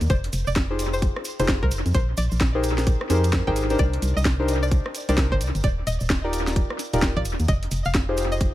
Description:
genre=UK garage, two-step garage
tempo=130 BPM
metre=4/4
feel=swing 62% on 16ths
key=unclear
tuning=A4 = 440 Hz
part: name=organ-like FM bass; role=bass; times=0.0-8.5 s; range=Eb1 to F2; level=-24 LUFS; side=equal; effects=none
part: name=garage drum kit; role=drums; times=0.0-8.5 s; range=hi-hat, rim click, snare drum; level=-28 LUFS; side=equal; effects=overdrive, small room ambience, analog delay
part: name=cabasa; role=percussion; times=0.0-8.5 s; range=none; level=-38 LUFS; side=right 4 dB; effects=analog delay
part: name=string-like resonator pluck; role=melody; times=0.1-8.5 s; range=Bb4 to G5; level=-31 LUFS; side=equal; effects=chorus, tape echo
part: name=electronic kick drum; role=drums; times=0.1-8.5 s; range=none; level=-23 LUFS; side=equal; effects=overdrive, small room ambience
part: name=deep mellow chord stab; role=stabs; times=0.7-8.5 s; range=D4 to D5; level=-27 LUFS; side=left 2 dB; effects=chorus, dub echo
room=little or no reverb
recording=echo-heavy mix, vinyl crackle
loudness=-20 LUFS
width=side -15 dB against mid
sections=0.0-8.5 A section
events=none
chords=0.1 Fm9; 1.9 Bb13sus4; 3.8 Cm9; 5.6 Ebmaj9; 7.5 Fm9

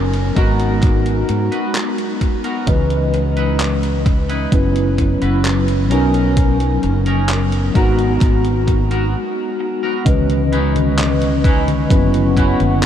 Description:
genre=vaporwave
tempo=65 BPM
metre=4/4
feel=straight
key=unclear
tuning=A4 = 440 Hz
part: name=tine electric piano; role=accompaniment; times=0.0-12.9 s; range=E3 to A#5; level=-18 LUFS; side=equal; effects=medium stereo tremolo, lush chorus, vintage 12-bit sampler grit, analog delay
part: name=mellow fretless electric bass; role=bass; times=0.0-12.9 s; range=F#1 to G#2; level=-18 LUFS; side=equal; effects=none
part: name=detuned 8-bit digital drum machine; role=drums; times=0.1-12.9 s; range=congas, handclaps, hi-hat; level=-26 LUFS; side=left 1 dB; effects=overdrive
part: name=twangy electric guitar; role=riff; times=0.4-12.6 s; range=B3 to B4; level=-26 LUFS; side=right 1 dB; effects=wide subtle chorus, analog delay
part: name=electronic kick drum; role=drums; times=0.4-12.6 s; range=none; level=-16 LUFS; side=equal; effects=overdrive
part: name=warbly tape-like pad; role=sustained chords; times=10.6-12.9 s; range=B3 to C#6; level=-24 LUFS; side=left 2 dB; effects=chorus, built-in reverb, vintage 12-bit sampler grit
room=wet huge ambient reverb, RT60 7.5 s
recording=dreamy mix soaked in reverb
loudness=-14 LUFS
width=side -10 dB against mid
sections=0.0-10.1 A section; 10.1-12.9 B section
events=break 9.1-10.1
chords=0.4 G#m9; 2.7 C#m9; 4.5 F#7sus4; 5.9 Bmaj9; 7.8 G#m9; 10.1 C#m9; 11.9 F#7sus4

